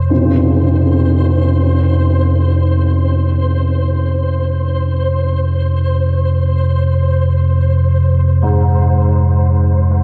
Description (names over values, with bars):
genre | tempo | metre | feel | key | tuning
dark ambient drone | free time | none | none | F minor | A4 = 440 Hz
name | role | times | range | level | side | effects
deep rumbling drone | drone | 0.0-10.0 s | F2 to C3 | -15 LUFS | equal | built-in reverb, phaser
flickering grainy texture | texture | 0.0-10.0 s | C5 | -26 LUFS | equal | built-in reverb, lush chorus
dark baby grand piano | arpeggios | 8.4-10.0 s | Ab2 | -22 LUFS | equal | ensemble chorus, tape echo
room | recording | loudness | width
moderate huge ambient reverb, RT60 8.8 s | dreamy mix soaked in reverb | -14 LUFS | mono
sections
0.0-10.0 A section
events
filter sweep on synth drone 0.0-10.0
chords
0.1 Fm